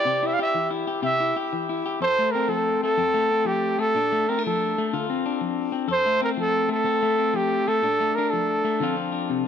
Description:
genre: highlife.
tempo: 124 BPM (dotted quarters).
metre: 12/8.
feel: straight.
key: F major.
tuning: A4 = 440 Hz.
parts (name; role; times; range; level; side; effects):
breathy trumpet; melody; 0.0-9.0 s; G4 to F5; -23 LUFS; right 2 dB; tape echo.
electric guitar at the edge of break-up; accompaniment; 0.0-9.5 s; F2 to A4; -26 LUFS; left 7 dB; spring reverb.
room: light reverb.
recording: none.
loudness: -21 LUFS.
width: side -8 dB against mid.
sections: 0.0-2.0 A section; 2.0-9.5 B section.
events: none.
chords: 0.0 C; 2.0 F; 3.9 Bbmaj7; 4.9 Dm7; 5.9 F; 7.8 Bbmaj7; 8.8 Dm7.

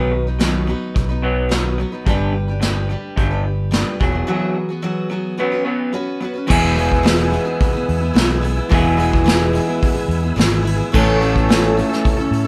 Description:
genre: folk rock and heartland rock.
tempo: 108 BPM.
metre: 4/4.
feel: straight.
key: E major.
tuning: A4 = 441 Hz.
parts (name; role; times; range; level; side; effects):
picked steel-string acoustic guitar; accompaniment; 0.0-12.5 s; A2 to B4; -24 LUFS; equal; none.
electric guitar through a small old amp; riff; 0.0-12.5 s; E2 to A4; -24 LUFS; equal; none.
fingered electric bass; bass; 0.0-12.5 s; E1 to A2; -23 LUFS; equal; none.
soft brush drum kit; drums; 0.4-12.4 s; crash cymbal, hi-hat, kick drum, snare drum; -21 LUFS; equal; none.
tonewheel organ; sustained chords; 6.5-12.5 s; B4 to E6; -32 LUFS; equal; slow rotary speaker, overdrive, chorus vibrato.
room: light reverb.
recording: band playing live in one room.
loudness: -18 LUFS.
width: mono.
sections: 0.0-6.5 A section; 6.5-12.5 B section.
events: none.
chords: 0.0 B; 2.1 G; 4.0 Eadd9; 5.4 Bsus2; 6.5 E; 10.9 A.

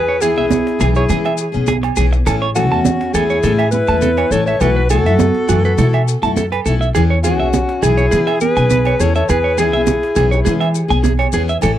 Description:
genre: highlife guitar band.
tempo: 102 BPM.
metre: 4/4.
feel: straight.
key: E major.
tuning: A4 = 440 Hz.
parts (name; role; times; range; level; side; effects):
warm alto saxophone; melody; 0.0-10.9 s; F#4 to C#5; -19 LUFS; left 1 dB; tape echo.
breathy trumpet; second line; 0.0-10.9 s; C#4 to A4; -25 LUFS; left 10 dB; none.
upright bass; bass; 0.0-11.8 s; A1 to E3; -17 LUFS; equal; none.
clean electric guitar; arpeggios; 0.1-11.7 s; F#4 to A5; -20 LUFS; right 5 dB; tape echo.
picked steel-string acoustic guitar; accompaniment; 0.2-11.8 s; E3 to A4; -22 LUFS; left 8 dB; none.
cajon; drums; 0.2-11.8 s; none; -27 LUFS; equal; none.
agogo bells; percussion; 0.2-11.8 s; none; -26 LUFS; right 20 dB; none.
maracas; percussion; 0.2-11.8 s; none; -30 LUFS; left 19 dB; none.
congas; percussion; 0.5-11.7 s; none; -22 LUFS; right 9 dB; none.
room: little or no reverb.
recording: dry, close 1970s-style studio recording.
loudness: -12 LUFS.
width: side -11 dB against mid.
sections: 0.0-11.8 A section.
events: none.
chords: 0.0 E6; 2.3 A; 4.6 B7sus4; 7.0 E6.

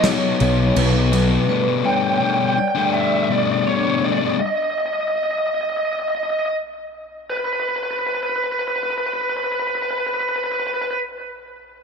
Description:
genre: post-rock.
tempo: 82 BPM.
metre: 4/4.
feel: straight.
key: unclear.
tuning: A4 = 443 Hz.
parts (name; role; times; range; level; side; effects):
vibraphone with hard mallets; arpeggios; 0.0-4.4 s; D4 to D5; -25 LUFS; right 6 dB; analog delay.
fuzz guitar; riff; 0.0-4.4 s; B2 to D#4; -20 LUFS; left 10 dB; distortion.
loose indie drum kit; drums; 0.0-1.3 s; crash cymbal, snare drum; -25 LUFS; right 2 dB; none.
fuzz picked electric bass; bass; 0.4-1.4 s; B1; -18 LUFS; right 1 dB; overdrive.
lead guitar through a small cranked amp; melody; 1.9-11.0 s; B4 to G5; -21 LUFS; right 1 dB; overdrive, analog delay.
room: light reverb, small room ambience.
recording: faint mains hum.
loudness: -18 LUFS.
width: side -6 dB against mid.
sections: 0.0-7.3 A section; 7.3-10.2 B section.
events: none.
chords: 0.0 B; 1.5 Gsus2/B; 4.4 N.C..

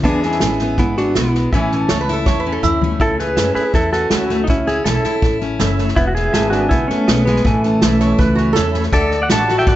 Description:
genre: honky-tonk and classic country.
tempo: 162 BPM.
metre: 4/4.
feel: straight.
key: A major.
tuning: A4 = 441 Hz.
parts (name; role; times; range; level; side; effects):
picked steel-string acoustic guitar; accompaniment; 0.0-9.8 s; E2 to A4; -23 LUFS; left 4 dB; none.
pedal steel guitar; sustained chords; 0.0-9.8 s; D5 to A5; -26 LUFS; equal; none.
upright bass; bass; 0.0-9.8 s; E1 to F#2; -22 LUFS; equal; none.
unplugged drum kit; drums; 0.0-9.8 s; hi-hat, kick drum, snare drum, toms; -19 LUFS; equal; none.
pedal steel guitar; melody; 0.1-9.8 s; E3 to A5; -17 LUFS; equal; none.
lap resonator guitar; second line; 1.9-2.9, 8.0-8.8 s; E4 to C#5; -21 LUFS; right 4 dB; none.
percussive tonewheel organ; accompaniment; 3.4-9.8 s; B3 to D5; -27 LUFS; right 4 dB; slow rotary speaker, overdrive, chorus vibrato.
room: moderate recital hall reverb, RT60 1.8 s.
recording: nothing above 7.9 kHz.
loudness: -14 LUFS.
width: side -13 dB against mid.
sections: 0.0-8.9 A section.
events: drum fill 2.3-3.0.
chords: 0.0 E; 1.5 A; 6.0 E; 7.5 A; 8.9 Dadd9.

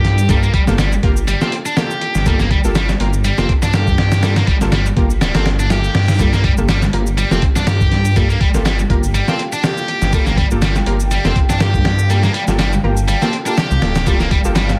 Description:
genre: breakbeat, breaks.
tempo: 122 BPM.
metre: 4/4.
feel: swing 55% on 16ths.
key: G minor.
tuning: A4 = 440 Hz.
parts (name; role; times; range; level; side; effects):
high-gain distorted guitar; riff; 0.0-14.7 s; G3 to G4; -23 LUFS; equal; distortion, low-pass filter, dub echo.
orchestra-hit-like synth stab; stabs; 0.0-14.5 s; Bb3 to Bb4; -26 LUFS; equal; built-in reverb, dub echo.
detuned saw bass; bass; 0.0-14.7 s; D1 to G2; -19 LUFS; equal; tube saturation.
dusty soul sampler-style drum kit; drums; 0.0-14.8 s; hi-hat, kick drum, snare drum; -19 LUFS; equal; none.
shaker; drums; 0.2-14.8 s; none; -36 LUFS; equal; overdrive.
reverse cymbal; sound effects; 5.7-6.2 s; none; -36 LUFS; equal; none.
deep dark ambient pad; sustained chords; 8.8-14.8 s; F5 to A5; -31 LUFS; equal; chorus, built-in reverb, sidechain pumping.
room: light reverb.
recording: dense, heavily limited modern master, vinyl crackle.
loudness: -15 LUFS.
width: mono.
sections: 0.0-14.8 A section.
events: kick drops out 5.2-6.2.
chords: 0.0 Gm9.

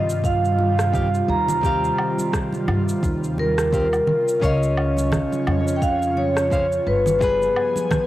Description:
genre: sunset chillout.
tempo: 86 BPM.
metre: 4/4.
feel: swing 57% on 16ths.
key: Eb mixolydian.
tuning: A4 = 440 Hz.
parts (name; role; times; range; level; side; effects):
vibraphone with medium hard mallets; melody; 0.0-8.1 s; Bb4 to Bb5; -22 LUFS; equal; tape echo.
flamenco guitar; accompaniment; 0.0-8.1 s; Db3 to F5; -27 LUFS; equal; auto-pan, cassette tape, tape echo.
airy breathy pad; sustained chords; 0.0-8.1 s; C3 to Ab5; -27 LUFS; equal; chorus, cassette tape.
upright bass; bass; 0.0-7.5 s; G1 to G2; -24 LUFS; equal; none.
electronic shaker, rim click and woodblock; drums; 0.1-8.1 s; none; -31 LUFS; equal; studio ambience.
electronic kick drum; drums; 0.2-8.1 s; none; -24 LUFS; equal; studio ambience.
congas; percussion; 0.6-8.1 s; none; -28 LUFS; right 2 dB; none.
room: moderate spring reverb, RT60 2.5 s.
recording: home recording on cassette.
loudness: -18 LUFS.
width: side -14 dB against mid.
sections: 0.0-8.1 A section.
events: none.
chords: 0.0 Eb69; 4.1 Db; 7.2 G7b9.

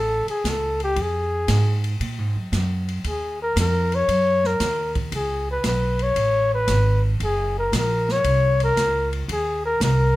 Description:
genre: jazz, small-group swing and bop.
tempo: 115 BPM.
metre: 4/4.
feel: swing 68% on 8ths.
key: unclear.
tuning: A4 = 440 Hz.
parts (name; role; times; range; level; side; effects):
mellow flugelhorn; melody; 0.0-10.2 s; G4 to Db5; -22 LUFS; left 2 dB; plate reverb.
upright bass; bass; 0.0-10.2 s; Gb1 to Bb2; -23 LUFS; right 1 dB; none.
open jazz drum kit; drums; 0.3-10.0 s; hi-hat, kick drum, ride cymbal, snare drum; -30 LUFS; equal; none.
room: moderate club reverb, RT60 0.7 s.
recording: none.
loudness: -19 LUFS.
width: side -16 dB against mid.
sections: 0.0-10.2 A section.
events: flugelhorn solo 0.0-10.2.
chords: 0.0 Gbm (rootless); 1.0 Fm; 2.0 Gbadd9; 3.0 Ebm9; 5.1 Db5; 7.2 Gb; 9.3 Cm7.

